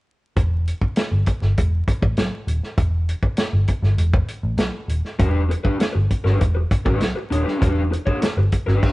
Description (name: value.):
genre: funk.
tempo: 99 BPM.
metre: 4/4.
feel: straight.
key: E dorian.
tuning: A4 = 441 Hz.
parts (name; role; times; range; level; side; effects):
vintage muted picked electric bass; bass; 0.4-8.8 s; D#1 to B1; -20 LUFS; equal; none.
warm soul drum kit; drums; 0.4-8.9 s; crash cymbal, hi-hat, kick drum, snare drum; -21 LUFS; equal; none.
raw garage guitar; accompaniment; 5.2-8.9 s; D4 to C#5; -24 LUFS; left 1 dB; overdrive.
room: light reverb.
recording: band playing live in one room, vinyl crackle, nothing above 10.7 kHz.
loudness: -18 LUFS.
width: side -20 dB against mid.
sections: 0.4-8.9 A section.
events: none.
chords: 0.4 Em7.